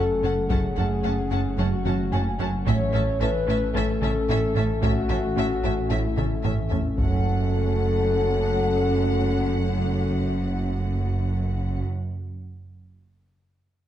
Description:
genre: cinematic, hybrid orchestral and electronic film score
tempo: 111 BPM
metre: 4/4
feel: straight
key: F# minor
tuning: A4 = 439 Hz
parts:
  - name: warm studio violin section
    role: melody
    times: 0.0-11.8 s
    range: A5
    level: -41 LUFS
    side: left 3 dB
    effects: low-pass filter
  - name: warm symphonic violin section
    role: second line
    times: 0.0-11.8 s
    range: E5 to F#5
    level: -35 LUFS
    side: left 3 dB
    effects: none
  - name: rich symphonic viola section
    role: accompaniment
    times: 0.0-11.8 s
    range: C#4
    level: -38 LUFS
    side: right 1 dB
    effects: low-pass filter
  - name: hollow soft pad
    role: sustained chords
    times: 0.0-11.8 s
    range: F#3 to F#5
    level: -32 LUFS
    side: left 2 dB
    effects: chorus, low-pass filter
  - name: mellow French horn section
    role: sustained chords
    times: 0.0-11.8 s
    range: E4 to C#5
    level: -28 LUFS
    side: left 4 dB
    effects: low-pass filter
  - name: soft round pluck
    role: arpeggios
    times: 0.0-6.9 s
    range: F#3 to A4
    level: -36 LUFS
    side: left 3 dB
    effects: none
  - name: round analog bass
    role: riff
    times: 0.0-6.9 s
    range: F#2 to A2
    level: -30 LUFS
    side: right 2 dB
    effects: low-pass filter
  - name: dark detuned saw bass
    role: bass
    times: 0.0-11.8 s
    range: F#1 to A1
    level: -30 LUFS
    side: left 1 dB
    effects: none
  - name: rich studio double bass section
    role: bass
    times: 0.0-11.8 s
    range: F#1 to A1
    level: -28 LUFS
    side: right 3 dB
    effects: none
  - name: rich symphonic cello section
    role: bass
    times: 0.0-11.8 s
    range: F#2 to A2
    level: -30 LUFS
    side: right 2 dB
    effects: none
  - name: felt-muted upright piano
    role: texture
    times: 0.0-7.0 s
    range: A3 to G#5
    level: -38 LUFS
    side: left 2 dB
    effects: ping-pong delay
  - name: taiko ensemble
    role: drums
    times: 0.5-8.0 s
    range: none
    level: -29 LUFS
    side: left 1 dB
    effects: none
room: wet recital hall reverb, RT60 1.5 s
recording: dark, warm production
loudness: -21 LUFS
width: side -11 dB against mid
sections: 0.0-7.0 A section; 7.0-11.3 B section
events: filter sweep 0.0-7.0; drum fill 6.2-7.0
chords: 0.0 F#m; 2.7 A; 7.0 F#m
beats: | 0.50 1.04 1.58 2.12 | 2.66 3.20 3.74 4.28 | 4.82 5.37 5.91 6.45 | 6.99 7.53 8.07 8.61 | 9.15 9.69 10.23 10.77

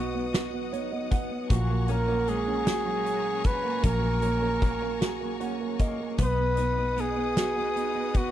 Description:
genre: six-eight pop ballad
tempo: 51 BPM (dotted quarters)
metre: 6/8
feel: straight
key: F# major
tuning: A4 = 440 Hz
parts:
  - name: warm flugelhorn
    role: melody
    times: 0.0-8.3 s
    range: F#4 to B4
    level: -29 LUFS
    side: equal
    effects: none
  - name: dark upright piano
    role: accompaniment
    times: 0.0-8.3 s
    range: A#2 to F#5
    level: -32 LUFS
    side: right 6 dB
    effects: none
  - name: warm studio string section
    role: sustained chords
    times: 0.0-8.3 s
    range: B3 to D#6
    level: -38 LUFS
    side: left 2 dB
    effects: none
  - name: direct-recorded clean electric guitar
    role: arpeggios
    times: 0.0-8.3 s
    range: F#3 to G#4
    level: -37 LUFS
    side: left 13 dB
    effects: tremolo
  - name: vintage muted fingered electric bass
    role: bass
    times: 0.0-8.3 s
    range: A#1 to B1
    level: -30 LUFS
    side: equal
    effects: none
  - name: loose indie drum kit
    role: drums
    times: 0.3-8.3 s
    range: hi-hat, kick drum, snare drum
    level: -27 LUFS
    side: equal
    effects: none
room: small room ambience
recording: none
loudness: -25 LUFS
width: side -12 dB against mid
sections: 0.0-8.3 A section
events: upright piano fill 0.3-1.5, 5.0-6.2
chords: 0.0 B; 1.5 F#add9/A#; 6.2 B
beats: 0.34 | 1.50 2.67 | 3.83 5.01 | 6.18 7.36

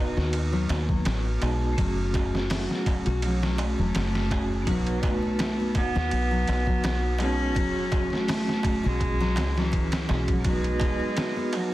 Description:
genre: trip hop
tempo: 83 BPM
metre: 4/4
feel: swing 54% on 16ths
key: F# dorian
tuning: A4 = 435 Hz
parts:
  - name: warm cello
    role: melody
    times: 0.0-11.7 s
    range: E3 to D#4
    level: -30 LUFS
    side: equal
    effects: tape echo
  - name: vibraphone with hard mallets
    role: accompaniment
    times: 0.0-11.7 s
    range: F#3 to A5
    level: -31 LUFS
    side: right 1 dB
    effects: tremolo, vintage 12-bit sampler grit, tape echo
  - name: nylon-string guitar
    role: arpeggios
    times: 0.2-11.5 s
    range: F#3 to G#4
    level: -33 LUFS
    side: left 3 dB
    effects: tape echo
  - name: deep dub fingered electric bass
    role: bass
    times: 0.2-11.0 s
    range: E1 to D#2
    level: -27 LUFS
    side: equal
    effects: none
  - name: trip hop sampler-style drum kit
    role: drums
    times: 0.2-11.7 s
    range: hi-hat, kick drum, ride cymbal, snare drum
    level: -29 LUFS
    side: equal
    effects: none
  - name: darbuka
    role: percussion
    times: 0.2-11.7 s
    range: none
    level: -39 LUFS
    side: right 2 dB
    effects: none
room: light reverb, small room ambience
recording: dense, heavily limited modern master, vinyl crackle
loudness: -23 LUFS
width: side -16 dB against mid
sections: 0.0-11.7 A section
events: none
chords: 0.0 B; 1.8 F#madd9; 4.7 B; 7.6 F#madd9; 10.5 B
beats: 0.33 1.05 | 1.78 2.50 3.22 3.94 | 4.67 5.39 6.11 6.84 | 7.56 8.28 9.01 9.73 | 10.45 11.17

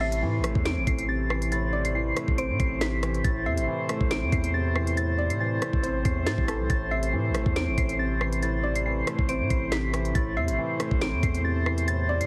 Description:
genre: hip hop, drill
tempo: 139 BPM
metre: 4/4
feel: half-time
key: A minor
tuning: A4 = 439 Hz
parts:
  - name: soft synth bell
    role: melody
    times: 0.0-12.3 s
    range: A6 to D7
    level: -33 LUFS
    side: equal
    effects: chorus, low-pass filter
  - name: soft round pluck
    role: second line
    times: 0.0-12.3 s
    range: A4 to E5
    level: -37 LUFS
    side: equal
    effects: chorus, delay
  - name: felt-muted upright piano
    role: accompaniment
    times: 0.0-12.3 s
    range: A2 to C4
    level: -34 LUFS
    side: equal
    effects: low-pass filter
  - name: warm brass ensemble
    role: sustained chords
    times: 0.0-12.3 s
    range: A3 to C5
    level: -39 LUFS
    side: equal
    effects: none
  - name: long sustained 808-style bass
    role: bass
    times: 0.0-12.3 s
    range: G#1 to A2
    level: -31 LUFS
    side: equal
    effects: none
  - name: drill drum kit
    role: drums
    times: 0.1-12.3 s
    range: hi-hat, kick drum, rim click, snare drum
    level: -31 LUFS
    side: equal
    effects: none
room: little or no reverb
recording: heavily compressed radio sound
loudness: -26 LUFS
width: mono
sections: 0.0-12.3 A section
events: none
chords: 0.0 Am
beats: 0.22 0.66 1.09 | 1.52 1.95 2.38 2.81 | 3.25 3.68 4.11 4.54 | 4.97 5.40 5.83 6.27 | 6.70 7.13 7.56 7.99 | 8.43 8.86 9.29 9.72 | 10.15 10.58 11.01 11.45 | 11.88

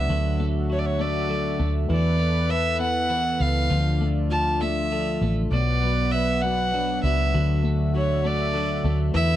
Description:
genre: six-eight pop ballad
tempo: 66 BPM (dotted quarters)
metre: 6/8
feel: straight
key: unclear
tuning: A4 = 440 Hz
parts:
  - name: warm violin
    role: melody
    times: 0.0-9.4 s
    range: C#5 to A5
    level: -26 LUFS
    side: right 1 dB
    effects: none
  - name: warm concert grand piano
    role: accompaniment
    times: 0.0-9.4 s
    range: B2 to B4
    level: -29 LUFS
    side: left 7 dB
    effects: none
  - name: warm analog pad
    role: sustained chords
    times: 0.0-9.4 s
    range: D3 to F#5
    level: -31 LUFS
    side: right 1 dB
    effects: chorus
  - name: twelve-string electric guitar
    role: arpeggios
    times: 0.0-9.4 s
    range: E3 to B3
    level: -32 LUFS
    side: right 4 dB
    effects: lush chorus
  - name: vintage muted fingered electric bass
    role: bass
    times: 0.0-9.4 s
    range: A1 to E2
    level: -24 LUFS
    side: equal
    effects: none
room: little or no reverb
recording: dry, close 1970s-style studio recording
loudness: -21 LUFS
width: side -12 dB against mid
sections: 0.0-9.4 A section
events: none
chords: 0.1 Dadd9; 1.9 Asus2/E; 3.7 Dmadd9; 5.5 Bm; 7.3 Dadd9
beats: | 0.10 1.00 | 1.90 2.80 | 3.71 4.61 | 5.52 6.43 | 7.34 8.25 | 9.15

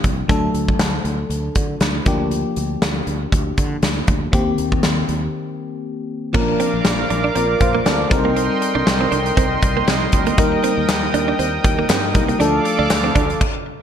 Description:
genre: 1980s-style pop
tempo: 119 BPM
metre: 4/4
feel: swing 55% on 16ths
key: unclear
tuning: A4 = 438 Hz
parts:
  - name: FM electric piano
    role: accompaniment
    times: 0.0-13.4 s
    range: Eb3 to F5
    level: -22 LUFS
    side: left 2 dB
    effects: chorus
  - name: sustaining fretless electric bass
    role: bass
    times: 0.0-13.3 s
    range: Bb1 to D3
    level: -24 LUFS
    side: equal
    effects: none
  - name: big rock drum kit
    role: drums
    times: 0.0-13.5 s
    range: crash cymbal, hi-hat, kick drum, snare drum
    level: -20 LUFS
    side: equal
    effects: gated reverb
  - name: brassy analog pad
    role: sustained chords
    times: 6.3-13.4 s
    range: A4 to Eb6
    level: -22 LUFS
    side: right 2 dB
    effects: chorus
  - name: direct-recorded clean electric guitar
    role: riff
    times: 6.3-13.2 s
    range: Bb3 to Eb4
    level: -24 LUFS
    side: right 6 dB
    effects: analog chorus, ping-pong delay
  - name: group handclap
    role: percussion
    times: 10.9-13.0 s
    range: none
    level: -33 LUFS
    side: left 2 dB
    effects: none
room: moderate plate reverb, RT60 1.9 s, small room ambience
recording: bright 1980s-style digital production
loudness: -16 LUFS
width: side -8 dB against mid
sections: 0.0-6.3 A section; 6.3-13.8 B section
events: break 5.3-6.3; stop 13.4-13.8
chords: 0.3 D; 2.1 Gm7/D; 4.3 Cm7/Eb; 6.3 Bb; 8.1 Cm7; 12.4 Dm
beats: | 0.30 0.80 1.31 1.81 | 2.32 2.82 3.32 3.83 | 4.33 4.84 5.34 5.84 | 6.35 6.85 7.36 7.86 | 8.37 8.87 9.38 9.88 | 10.38 10.89 11.39 11.90 | 12.40 12.90 13.41

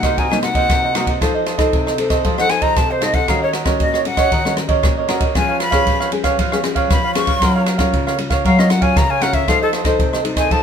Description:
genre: samba and choro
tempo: 116 BPM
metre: 4/4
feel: straight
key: unclear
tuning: A4 = 440 Hz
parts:
  - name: breathy bright jazz flute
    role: second line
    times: 0.0-10.6 s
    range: A4 to Db6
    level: -19 LUFS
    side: left 3 dB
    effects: none
  - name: cavaquinho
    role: accompaniment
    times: 0.0-10.6 s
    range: F4 to F5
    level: -20 LUFS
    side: right 6 dB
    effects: none
  - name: nylon-string guitar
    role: accompaniment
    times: 0.0-10.6 s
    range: Bb2 to C5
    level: -20 LUFS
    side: left 3 dB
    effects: none
  - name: open jazz drum kit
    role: drums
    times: 0.0-10.6 s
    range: kick drum, ride cymbal, rim click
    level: -19 LUFS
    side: equal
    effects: none
room: wet studio reverb, RT60 0.6 s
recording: minimal, uncompressed stereo recording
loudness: -14 LUFS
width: side -7 dB against mid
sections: 0.0-10.6 A section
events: flute solo 0.0-10.6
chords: 0.0 Cm7b5; 1.2 F7; 3.3 Ebm7; 5.4 Db7/F; 7.4 Gbmaj7; 9.5 F7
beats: 0.18 0.70 | 1.22 1.73 2.25 2.77 | 3.29 3.80 4.32 4.84 | 5.35 5.87 6.39 6.90 | 7.42 7.93 8.45 8.96 | 9.48 9.99 10.51

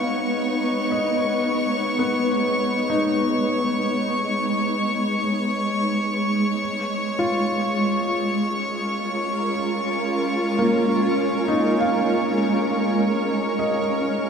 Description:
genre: ambient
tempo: free time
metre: none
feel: none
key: G# dorian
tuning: A4 = 439 Hz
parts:
  - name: shimmering ambient pad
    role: sustained chords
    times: 0.0-14.3 s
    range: G#3 to B4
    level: -23 LUFS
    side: right 1 dB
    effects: chorus, built-in reverb
  - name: felt-muted upright piano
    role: arpeggios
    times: 0.0-14.3 s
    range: A#3 to E#5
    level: -26 LUFS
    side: left 1 dB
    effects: ping-pong delay
  - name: warm chamber violin section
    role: texture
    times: 0.0-14.3 s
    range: C#5 to C#6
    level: -26 LUFS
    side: left 1 dB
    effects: none
room: wet huge ambient reverb, RT60 7.7 s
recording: none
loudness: -20 LUFS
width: side -6 dB against mid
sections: 0.0-14.3 A section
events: none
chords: 0.0 G#m; 6.6 A#m7/G#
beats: free time

